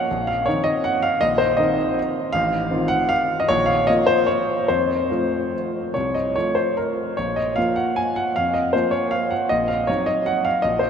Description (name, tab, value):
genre	classical, piano waltz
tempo	139-170 BPM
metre	3/4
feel	rubato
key	Bb minor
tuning	A4 = 440 Hz
part	warm grand piano	solo	0.0-10.9 s	A1 to Ab5	-18 LUFS	equal	none
room	wet cathedral reverb, RT60 6.8 s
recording	in a vast, echoing space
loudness	-18 LUFS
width	side -7 dB against mid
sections	0.0-10.9 A section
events	none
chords	0.1 Ebm69/Bb; 2.3 F7/A; 3.5 Bbm; 4.7 F; 7.2 Bb5; 9.5 Cm7b5/Bb